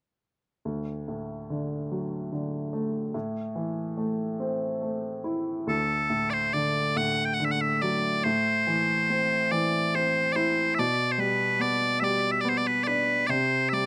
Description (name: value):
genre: celtic folk, Celtic slow air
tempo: 47 BPM (dotted quarters)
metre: 6/8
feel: rubato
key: D mixolydian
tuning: A4 = 440 Hz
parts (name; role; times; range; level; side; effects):
- warm upright piano; accompaniment; 0.7-13.9 s; D2 to E4; -31 LUFS; equal; none
- loud bright bagpipes; melody; 5.7-13.9 s; A4 to G5; -27 LUFS; equal; none
room: little or no reverb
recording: recorded outdoors, with no room sound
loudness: -27 LUFS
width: mono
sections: 0.6-5.7 A section; 5.7-13.9 B section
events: none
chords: 0.6 D; 3.1 Am; 5.7 D; 8.3 Am; 10.8 G/B; 13.3 C5